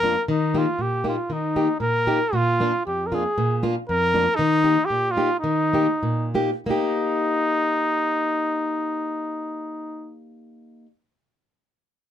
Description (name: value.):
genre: alpine folk, alpine dance band.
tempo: 86-120 BPM.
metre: 2/4.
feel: rubato.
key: Eb major.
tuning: A4 = 440 Hz.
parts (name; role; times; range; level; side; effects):
mellow trumpet; melody; 0.0-10.2 s; Eb4 to Bb4; -22 LUFS; equal; none.
fingerpicked plugged-in steel-string acoustic guitar; accompaniment; 0.0-10.9 s; F2 to G4; -24 LUFS; left 1 dB; none.
room: light reverb.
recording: close, detailed microphones.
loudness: -20 LUFS.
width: side -10 dB against mid.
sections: 0.0-2.3 A section; 2.3-6.7 B section; 6.7-9.4 C section.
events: slowing down 4.4-6.7.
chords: 0.3 Eb; 2.3 Bb7; 4.4 Eb.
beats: | 0.28 0.79 | 1.29 1.81 | 2.33 2.85 | 3.37 3.88 | 4.39 4.90 | 5.43 6.02 | 6.68 7.37 | 8.04 8.72.